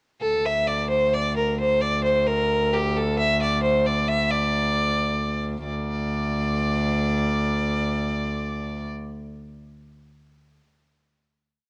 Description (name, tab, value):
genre	medieval dance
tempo	87-96 BPM (dotted quarters)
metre	6/8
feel	straight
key	unclear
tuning	A4 = 440 Hz
part	clear fiddle	melody	0.2-8.9 s	G4 to E5	-26 LUFS	equal	cassette tape
part	warm viola da gamba	drone	0.2-8.9 s	D2	-28 LUFS	equal	none
room	wet spring reverb, RT60 2.0 s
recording	home recording on cassette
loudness	-24 LUFS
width	mono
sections	0.2-5.6 A section; 5.6-8.2 final note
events	speeding up 0.2-8.2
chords	none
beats	| 0.22 0.91 | 1.60 2.28 | 2.96 3.64 | 4.31 4.97 | 5.63 6.29 | 6.93 7.57